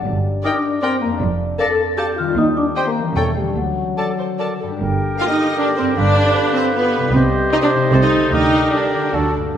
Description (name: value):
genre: cinematic, playful, whimsical film cue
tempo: 153 BPM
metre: 3/4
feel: straight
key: G minor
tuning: A4 = 440 Hz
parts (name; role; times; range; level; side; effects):
- large celesta; melody; 0.0-9.3 s; F#5 to Bb6; -26 LUFS; left 3 dB; none
- dark French horn section; sustained chords; 0.0-9.3 s; F#3 to Bb4; -23 LUFS; left 2 dB; none
- concert harp; arpeggios; 0.0-9.6 s; F2 to D5; -26 LUFS; left 6 dB; none
- rich studio cello section; bass; 0.1-9.6 s; D2 to D3; -23 LUFS; right 3 dB; none
- warm studio double bass section; bass; 0.1-9.6 s; E1 to Eb2; -22 LUFS; right 2 dB; none
- bright clarinet; second line; 0.4-9.6 s; F#4 to Bb4; -27 LUFS; left 1 dB; none
- mellow concert flute; second line; 0.4-9.6 s; Eb5 to A5; -28 LUFS; left 2 dB; none
- rich studio violin section; second line; 0.4-9.3 s; B4 to F5; -26 LUFS; left 3 dB; none
- warm oboe; second line; 0.4-9.6 s; A4 to D5; -26 LUFS; right 2 dB; none
- rich studio viola section; accompaniment; 0.4-9.3 s; B3 to C5; -20 LUFS; right 2 dB; none
- rich studio violin section; melody; 0.5-9.4 s; F#4 to A5; -31 LUFS; left 3 dB; none
- mellow bassoon; accompaniment; 4.8-9.6 s; C3 to D3; -24 LUFS; right 1 dB; none
room: wet scoring stage reverb, RT60 1.6 s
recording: none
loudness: -15 LUFS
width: side -9 dB against mid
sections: 0.0-4.8 A section; 4.8-9.6 B section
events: none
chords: 0.1 Gm; 1.2 Dm/F; 2.4 Cm/Eb; 3.2 A7/E; 3.6 D; 4.8 Gm; 6.0 G7; 7.1 Cm; 8.3 Gm/D; 9.1 D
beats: | 0.05 0.44 0.82 | 1.21 1.60 1.99 | 2.37 2.76 3.16 | 3.57 3.98 4.39 | 4.80 5.20 5.59 | 5.98 6.36 6.75 | 7.14 7.53 7.93 | 8.33 8.73 9.13 | 9.54